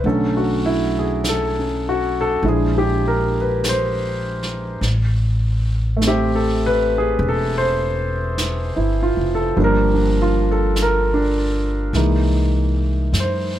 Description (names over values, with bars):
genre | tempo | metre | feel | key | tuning
jazz ballad | 50 BPM | 4/4 | swing 68% on 8ths | unclear | A4 = 439 Hz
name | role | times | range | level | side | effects
warm grand piano | accompaniment | 0.0-13.6 s | D3 to E5 | -19 LUFS | equal | none
upright bass | bass | 0.0-13.6 s | E1 to F#2 | -21 LUFS | equal | none
vintage brush drum kit | drums | 0.0-13.6 s | brushed snare drum, hi-hat, snare drum | -30 LUFS | right 2 dB | none
room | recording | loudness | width
little or no reverb | none | -17 LUFS | side -12 dB against mid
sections
0.0-13.6 A section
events
none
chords
0.0 Bm9; 2.4 Bb7#11; 4.8 Am7; 9.6 Gm7; 11.9 C7alt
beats
| 0.05 1.24 2.43 3.63 | 4.82 6.00 7.20 8.38 | 9.57 10.75 11.94 13.14